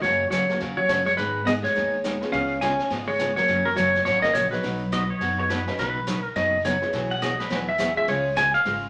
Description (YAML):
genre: country, western swing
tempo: 208 BPM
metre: 4/4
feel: swing 62% on 8ths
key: B major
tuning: A4 = 440 Hz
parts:
  - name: clean lap steel guitar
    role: melody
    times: 0.0-8.9 s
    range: A#4 to G#5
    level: -25 LUFS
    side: equal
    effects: none
  - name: vintage hollow-body jazz guitar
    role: second line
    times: 0.0-5.5 s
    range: F#3 to C#4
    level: -32 LUFS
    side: equal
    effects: none
  - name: honky-tonk upright piano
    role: accompaniment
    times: 0.0-8.3 s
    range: F#3 to B4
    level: -37 LUFS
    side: equal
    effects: none
  - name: picked steel-string acoustic guitar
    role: accompaniment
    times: 0.0-8.9 s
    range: B2 to B4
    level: -33 LUFS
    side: equal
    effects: none
  - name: upright bass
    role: bass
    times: 0.0-8.9 s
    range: F#1 to G#2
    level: -37 LUFS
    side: equal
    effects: none
  - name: jazz brush drum kit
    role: drums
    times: 0.0-8.9 s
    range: brushed snare drum, hi-hat, snare drum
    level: -36 LUFS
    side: equal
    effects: none
  - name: pedal steel guitar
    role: second line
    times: 4.9-7.6 s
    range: B4 to F#5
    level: -30 LUFS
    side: equal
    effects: none
room: wet large studio reverb, RT60 0.9 s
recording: none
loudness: -24 LUFS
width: mono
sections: 0.0-5.8 A section; 5.8-8.9 A section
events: none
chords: 0.0 F#; 1.2 G#m; 2.3 C#7; 3.5 F#; 4.6 B; 5.8 Badd9; 6.9 Eadd9/B; 8.1 C#